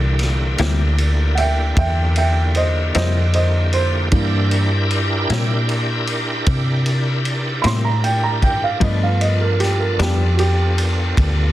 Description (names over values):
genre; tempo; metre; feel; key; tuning
slow blues; 51 BPM (dotted quarters); 12/8; straight; C mixolydian; A4 = 441 Hz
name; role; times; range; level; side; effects
warm upright piano; accompaniment; 0.0-11.5 s; E3 to C6; -22 LUFS; right 4 dB; none
bright tonewheel organ; sustained chords; 0.0-11.5 s; D3 to Bb4; -24 LUFS; equal; slow rotary speaker, chorus vibrato
vintage muted fingered electric bass; bass; 0.0-11.5 s; C2 to C3; -18 LUFS; equal; none
vintage drum kit; drums; 0.2-11.4 s; kick drum, ride cymbal, snare drum; -24 LUFS; equal; none
direct-recorded clean electric guitar; accompaniment; 0.6-10.2 s; G2 to E4; -24 LUFS; left 7 dB; harmonic tremolo
room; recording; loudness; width
little or no reverb; dense, heavily limited modern master; -15 LUFS; side -14 dB against mid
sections
0.0-11.5 A section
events
upright piano solo 0.0-11.5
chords
0.0 C7; 8.8 G7